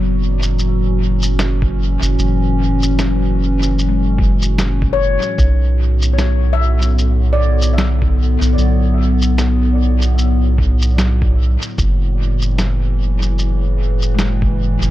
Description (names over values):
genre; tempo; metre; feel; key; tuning
ambient dub; 75 BPM; 4/4; swing 59% on 16ths; B dorian; A4 = 441 Hz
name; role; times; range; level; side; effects
warbly tape-like pad; sustained chords; 0.0-14.9 s; A2 to F#4; -20 LUFS; left 1 dB; chorus, built-in reverb
soft dub sub bass; bass; 0.0-14.9 s; F#1 to B1; -15 LUFS; equal; none
electronic shaker and snare drum; drums; 0.4-14.9 s; none; -24 LUFS; equal; dub echo
electronic kick drum; drums; 1.6-14.6 s; none; -18 LUFS; equal; none
handpan; arpeggios; 3.9-9.3, 14.1-14.9 s; G#3 to E5; -24 LUFS; left 4 dB; dub echo
room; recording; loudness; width
little or no reverb; none; -13 LUFS; side -15 dB against mid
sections
0.0-14.9 A section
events
none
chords
0.0 F#m7; 5.4 Bm7; 11.8 F#m7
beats
0.58 1.38 | 2.18 2.98 3.78 4.58 | 5.38 6.18 6.98 7.78 | 8.58 9.38 10.18 10.98 | 11.78 12.58 13.38 14.18